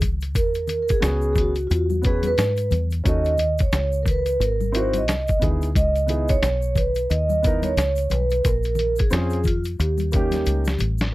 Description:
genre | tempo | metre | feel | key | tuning
hip hop, jazz-hop | 89 BPM | 4/4 | swing 59% on 16ths | unclear | A4 = 440 Hz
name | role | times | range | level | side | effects
deep dub fingered electric bass | bass | 0.0-11.1 s | G#1 to G#2 | -23 LUFS | equal | none
lo-fi sampler-style drum kit | drums | 0.0-11.1 s | hi-hat, kick drum, snare drum | -23 LUFS | equal | none
congas and egg shaker | percussion | 0.0-11.1 s | none | -34 LUFS | left 6 dB | none
vibraphone with soft mallets | melody | 0.4-10.8 s | E#4 to D#5 | -24 LUFS | right 2 dB | none
dark grand piano | accompaniment | 1.0-11.1 s | A#3 to B4 | -27 LUFS | right 1 dB | none
room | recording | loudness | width
little or no reverb | dry, close 1970s-style studio recording | -19 LUFS | side -18 dB against mid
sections
0.0-11.1 A section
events
drum fill 10.5-11.1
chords
0.4 E69; 3.0 D#m7b5; 4.4 G#7b13; 5.7 C#m9; 8.4 A#m7; 9.8 D#7

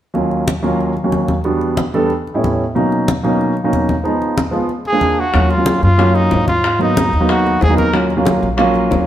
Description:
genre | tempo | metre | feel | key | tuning
Afro-Cuban jazz | 185 BPM | 4/4 | straight | Eb minor | A4 = 440 Hz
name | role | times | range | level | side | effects
warm grand piano | accompaniment | 0.1-9.0 s | Eb2 to A4 | -15 LUFS | right 1 dB | none
congas | percussion | 0.1-9.1 s | none | -22 LUFS | left 1 dB | none
warm trumpet | melody | 4.9-8.1 s | Eb4 to Bb4 | -17 LUFS | right 1 dB | none
upright bass | bass | 5.3-9.1 s | Bb1 to Ab2 | -18 LUFS | equal | none
bongos | percussion | 5.3-9.1 s | none | -23 LUFS | left 4 dB | none
room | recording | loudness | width
wet stone room reverb, RT60 1.3 s | band playing live in one room | -13 LUFS | side -11 dB against mid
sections
0.2-5.3 A section; 5.3-9.1 B section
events
none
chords
0.2 Ebm7; 1.4 Em7; 2.1 A9; 2.7 Bmaj9; 4.0 Fm7b5; 4.7 Bb7; 5.3 Ebm7; 6.6 Abm7; 7.9 Ebm7

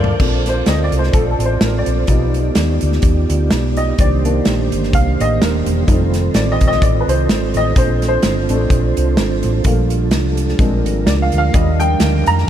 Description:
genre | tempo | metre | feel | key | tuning
uptempo gospel | 127 BPM | 4/4 | swing 55% on 8ths | Bb major | A4 = 440 Hz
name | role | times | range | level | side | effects
dark baby grand piano | accompaniment | 0.0-12.5 s | Eb3 to Bb5 | -21 LUFS | left 1 dB | analog chorus
mellow tonewheel organ | sustained chords | 0.0-12.5 s | Eb3 to D6 | -20 LUFS | right 4 dB | slow rotary speaker, chorus vibrato
hollow-body short-scale fingered electric bass | bass | 0.0-12.5 s | E1 to G2 | -17 LUFS | equal | none
natural country drum kit | drums | 0.0-12.4 s | crash cymbal, hi-hat, kick drum, snare drum, toms | -18 LUFS | equal | none
room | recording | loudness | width
moderate huge ambient reverb, RT60 6.2 s | dreamy mix soaked in reverb | -13 LUFS | side -10 dB against mid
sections
0.2-12.5 A section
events
drum fill 0.0; grand piano solo 0.2-12.5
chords
0.2 Bbmaj9; 2.1 G7b13/B; 4.0 Cm9; 5.9 F7; 7.8 Bbmaj9; 9.7 Gm9/Bb; 10.6 Bb7; 11.5 Ebmaj7

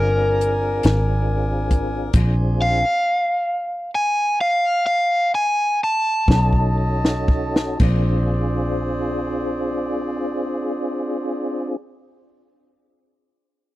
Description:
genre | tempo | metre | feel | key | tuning
slow blues | 38-47 BPM (dotted quarters) | 12/8 | straight | Bb mixolydian | A4 = 441 Hz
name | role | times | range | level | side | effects
crunchy overdriven guitar | melody | 0.0-6.8 s | Bb4 to A5 | -19 LUFS | equal | none
mellow tonewheel organ | sustained chords | 0.0-11.8 s | C4 to A4 | -25 LUFS | equal | slow rotary speaker, chorus vibrato
warm horn section | sustained chords | 0.0-11.8 s | Ab4 to A5 | -29 LUFS | left 1 dB | none
fingered electric bass | bass | 0.0-11.8 s | G1 to B1 | -20 LUFS | equal | none
compact cocktail drum kit | drums | 0.4-8.0 s | crash cymbal, hi-hat, kick drum, snare drum | -18 LUFS | equal | none
room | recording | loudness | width
small room reverb | dry, close 1970s-style studio recording | -18 LUFS | side -16 dB against mid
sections
0.0-7.8 A section; 7.8-13.8 B section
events
slowing down 0.4-7.8; drum fill 6.3-7.8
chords
0.0 Bb7; 2.1 Bb9; 6.3 B9; 7.8 Bb9

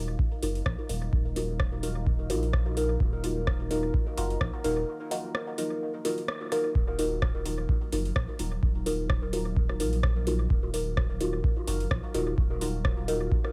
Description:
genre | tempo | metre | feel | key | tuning
dub techno | 128 BPM | 4/4 | swing 55% on 16ths | Eb minor | A4 = 440 Hz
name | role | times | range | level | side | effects
deep dark ambient pad | sustained chords | 0.0-13.5 s | Gb3 to F5 | -43 LUFS | equal | chorus, built-in reverb, sidechain pumping
deep mellow chord stab | stabs | 0.0-13.5 s | Eb4 to Bb4 | -34 LUFS | equal | chorus, phaser, sidechain pumping, dub echo
soft dub sub bass | bass | 0.0-13.3 s | Eb1 to Bb1 | -34 LUFS | equal | sidechain pumping
electronic kick drum | drums | 0.2-13.4 s | none | -30 LUFS | equal | none
booming analog drum machine | drums | 0.4-13.5 s | hi-hat, rim click | -39 LUFS | equal | dub echo
room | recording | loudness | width
digital ambience | echo-heavy mix | -29 LUFS | mono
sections
0.0-6.8 A section; 6.8-13.5 A section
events
filter sweep on synth stab 0.0-6.8; break 4.9-6.8; band accent 6.3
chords
0.0 Ebmadd9

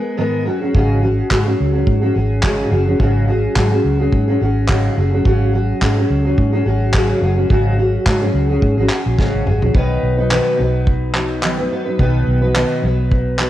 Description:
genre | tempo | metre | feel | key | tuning
acoustic pop | 107 BPM | 4/4 | swing 55% on 16ths | unclear | A4 = 444 Hz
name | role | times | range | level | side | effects
fingerpicked steel-string acoustic guitar | accompaniment | 0.0-13.5 s | G#2 to B4 | -17 LUFS | equal | double-tracked left and right
vintage muted fingered electric bass | bass | 0.7-13.5 s | F#1 to G#2 | -17 LUFS | equal | transformer saturation
unplugged drum kit | drums | 0.7-13.5 s | handclaps, kick drum, snare drum, toms | -18 LUFS | equal | cassette tape
room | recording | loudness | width
light reverb, small room ambience | home recording on cassette | -14 LUFS | side -13 dB against mid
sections
0.0-9.8 A section; 9.8-13.5 B section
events
drum fill 9.2-9.8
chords
0.5 C#sus4; 9.8 B

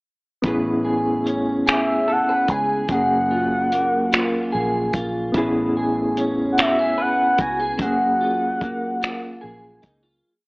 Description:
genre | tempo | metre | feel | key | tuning
slow six-eight R&B | 49 BPM (dotted quarters) | 6/8 | straight | F# major | A4 = 440 Hz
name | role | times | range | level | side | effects
electric guitar at the edge of break-up | second line | 0.4-10.5 s | F#3 to B4 | -25 LUFS | equal | analog chorus
overdriven reed electric piano | accompaniment | 0.4-10.3 s | A3 to G#4 | -23 LUFS | equal | fast tremolo
vintage muted fingered electric bass | bass | 0.4-10.2 s | F#1 to C#2 | -33 LUFS | equal | none
cloth-damped thuddy drum kit | drums | 0.4-10.0 s | finger snaps, hi-hat, kick drum | -22 LUFS | equal | none
mellow horn-like synth lead | melody | 1.7-9.8 s | E5 to G#5 | -21 LUFS | equal | chorus, phaser
room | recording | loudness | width
light reverb | AM radio sound | -18 LUFS | side -31 dB against mid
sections
0.4-10.2 verse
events
fade-out 7.8-10.2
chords
0.4 Amaj9; 2.9 F#maj9; 5.3 Amaj9; 7.8 F#maj9

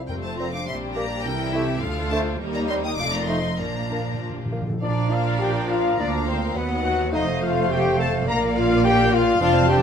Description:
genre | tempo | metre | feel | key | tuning
quick classical-period movement for symphony orchestra | 104 BPM | 2/4 | rubato | Bb major | A4 = 440 Hz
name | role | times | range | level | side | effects
mellow bassoon | accompaniment | 0.0-9.8 s | F3 to C4 | -30 LUFS | right 2 dB | none
warm French horn section | sustained chords | 0.0-9.8 s | E3 to Bb4 | -25 LUFS | left 4 dB | none
clear chamber violin section | melody | 0.1-9.8 s | E5 to Eb6 | -33 LUFS | left 4 dB | none
rich chamber violin section | second line | 0.1-9.8 s | D4 to F5 | -35 LUFS | left 4 dB | none
silver concert flute | second line | 0.1-9.8 s | G4 to Bb5 | -32 LUFS | left 1 dB | none
rich chamber viola section | accompaniment | 0.1-9.8 s | E3 to F4 | -29 LUFS | right 2 dB | none
rich chamber cello section | bass | 0.1-9.8 s | D2 to C3 | -29 LUFS | right 3 dB | none
rich chamber double bass section | bass | 0.1-9.8 s | F1 to Eb2 | -28 LUFS | right 4 dB | none
timpani | percussion | 0.1-0.6, 3.6-4.8 s | F2 to Bb2 | -32 LUFS | equal | none
dark clarinet | second line | 0.4-9.8 s | D4 to D5 | -34 LUFS | left 3 dB | none
clear trumpet section | stabs | 4.8-9.8 s | B4 to Bb5 | -28 LUFS | left 1 dB | none
room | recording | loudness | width
light reverb | close, detailed microphones | -20 LUFS | side -7 dB against mid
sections
0.0-4.8 A section; 4.8-9.8 B section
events
timpani fill 3.6-4.8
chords
0.1 F; 0.7 Gm/Bb; 1.2 C6; 1.8 Dm; 2.4 Eb; 3.0 F7; 3.6 Bb; 6.0 Bb/D; 6.6 B/D#; 7.1 F; 8.3 Bb

